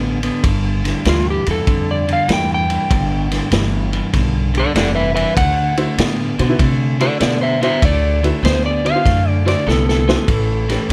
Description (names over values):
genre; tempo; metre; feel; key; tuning
electric blues shuffle; 98 BPM; 4/4; swing 67% on 8ths; unclear; A4 = 440 Hz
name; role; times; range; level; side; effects
electric guitar at the edge of break-up; riff; 0.0-10.9 s; G2 to B3; -23 LUFS; equal; none
upright bass; bass; 0.0-10.9 s; F1 to C3; -22 LUFS; equal; none
vintage drum kit; drums; 0.2-10.9 s; kick drum, ride cymbal, snare drum; -22 LUFS; equal; none
electric slide guitar; melody; 1.1-10.9 s; F4 to G5; -22 LUFS; equal; plate reverb
honky-tonk upright piano; accompaniment; 5.8-10.8 s; C#4 to C5; -24 LUFS; equal; none
room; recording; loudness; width
light reverb; none; -16 LUFS; mono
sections
0.0-10.9 A section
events
electric slide guitar solo 0.0-10.9; drum fill 9.7-10.3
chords
0.4 G7(no3); 5.4 D9; 10.3 A9